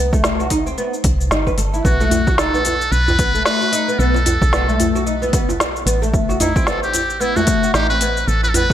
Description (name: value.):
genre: organic downtempo.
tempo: 112 BPM.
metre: 4/4.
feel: swing 58% on 16ths.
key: B phrygian dominant.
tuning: A4 = 440 Hz.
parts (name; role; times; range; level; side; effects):
oud; arpeggios; 0.0-8.7 s; A3 to B4; -21 LUFS; left 1 dB; tape echo.
woody FM bass; bass; 0.0-8.7 s; G1 to C2; -20 LUFS; equal; none.
electronic kick drum; drums; 0.1-8.7 s; none; -19 LUFS; equal; overdrive.
organic electronic drum kit; drums; 0.1-8.7 s; hi-hat, shaker, snare drum; -22 LUFS; equal; none.
trumpet with metal mute; melody; 1.9-8.7 s; E4 to B4; -20 LUFS; equal; tape echo.
djembe; percussion; 2.0-8.7 s; none; -24 LUFS; right 3 dB; none.
room: light reverb, small room ambience.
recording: none.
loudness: -14 LUFS.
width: side -11 dB against mid.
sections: 0.0-8.7 A section.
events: none.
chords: 0.0 C5; 1.8 B7(no3); 6.1 N.C..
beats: 0.24 0.78 1.31 | 1.85 2.38 2.92 3.46 | 3.99 4.53 5.06 5.60 | 6.13 6.67 7.21 7.74 | 8.28.